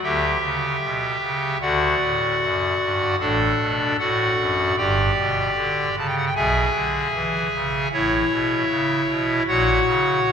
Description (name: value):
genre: classical, chorale-style piece for pipe organ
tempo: 76 BPM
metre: 4/4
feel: rubato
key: D major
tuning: A4 = 440 Hz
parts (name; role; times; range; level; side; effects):
- pipe organ, clarinet reed; solo; 0.0-10.3 s; G1 to A5; -19 LUFS; equal; none
room: wet cathedral reverb, RT60 4.8 s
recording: minimal, uncompressed stereo recording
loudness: -19 LUFS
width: side -7 dB against mid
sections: 0.0-10.3 A section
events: none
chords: 0.0 G6/D; 1.6 D; 3.2 D/A; 4.8 G; 6.4 E7/B; 7.9 A; 9.5 F#/A#